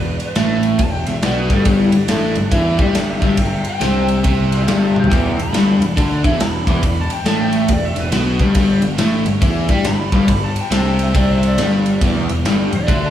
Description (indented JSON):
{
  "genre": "blues rock power trio and southern rock",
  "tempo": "139 BPM",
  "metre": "4/4",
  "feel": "swing 63% on 8ths",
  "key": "E minor",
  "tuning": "A4 = 443 Hz",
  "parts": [
    { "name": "lead guitar through a small cranked amp", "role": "second line", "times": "0.0-13.1 s", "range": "D4 to D6", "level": "-25 LUFS", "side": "equal", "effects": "overdrive, slapback echo" },
    { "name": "crunchy overdriven guitar", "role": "riff", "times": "0.0-13.1 s", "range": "E2 to G4", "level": "-17 LUFS", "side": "left 1 dB", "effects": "none" },
    { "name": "fuzz picked electric bass", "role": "bass", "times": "0.0-13.1 s", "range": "E1 to G2", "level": "-20 LUFS", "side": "equal", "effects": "overdrive" },
    { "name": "big rock drum kit", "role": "drums", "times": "0.2-13.0 s", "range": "kick drum, ride cymbal, snare drum, toms", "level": "-19 LUFS", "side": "equal", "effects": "none" }
  ],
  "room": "moderate lush hall reverb, RT60 1.8 s, small room ambience",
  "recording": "big arena sound",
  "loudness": "-14 LUFS",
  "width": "side -11 dB against mid",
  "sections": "0.0-13.1 A section",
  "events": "lead electric guitar solo 0.0-13.1; drum fill 4.9",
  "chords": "0.0 Em; 1.7 G5; 5.1 Em; 8.6 Am7/G; 12.0 Em"
}